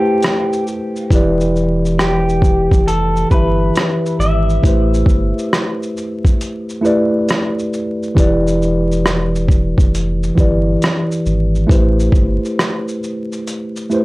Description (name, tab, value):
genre	lo-fi hip hop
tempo	68 BPM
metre	4/4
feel	swing 65% on 16ths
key	A minor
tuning	A4 = 440 Hz
part	electric guitar through a small old amp	melody	0.0-7.7 s	G4 to E5	-20 LUFS	equal	spring reverb, low-pass filter, tape echo
part	tine electric piano	accompaniment	0.0-14.0 s	E3 to E5	-17 LUFS	equal	medium stereo tremolo, cassette tape, low-pass filter
part	boom bap sampler-style drum kit	drums	0.2-14.0 s	hi-hat, kick drum, rim click, shaker	-15 LUFS	equal	vintage 12-bit sampler grit
part	warm sub bass	bass	1.1-12.4 s	E1 to A1	-18 LUFS	equal	none
room	light reverb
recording	dry, gritty hardware recording, transformer saturation, vinyl crackle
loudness	-13 LUFS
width	side -20 dB against mid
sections	0.0-14.0 A section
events	none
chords	0.0 Am7; 1.1 Em7; 4.6 Am7; 8.2 Em7; 11.7 Am7